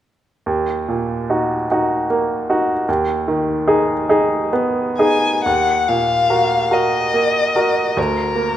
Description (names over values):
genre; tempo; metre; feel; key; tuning
classical, romantic duo for violin and grand piano; 42-51 BPM (dotted quarters); 6/8; rubato; Eb minor; A4 = 440 Hz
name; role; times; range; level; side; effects
bright baby grand piano; accompaniment; 0.5-8.6 s; D2 to Bb4; -17 LUFS; right 1 dB; none
rich violin; melody; 5.0-8.6 s; Bb4 to Ab5; -17 LUFS; left 4 dB; none
room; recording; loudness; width
moderate recital hall reverb, RT60 1.5 s; none; -15 LUFS; side -11 dB against mid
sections
0.5-5.5 A section; 5.5-8.6 B section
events
none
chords
0.5 Ebm; 2.9 Abm/Eb; 5.5 Ebm; 8.0 Bb/D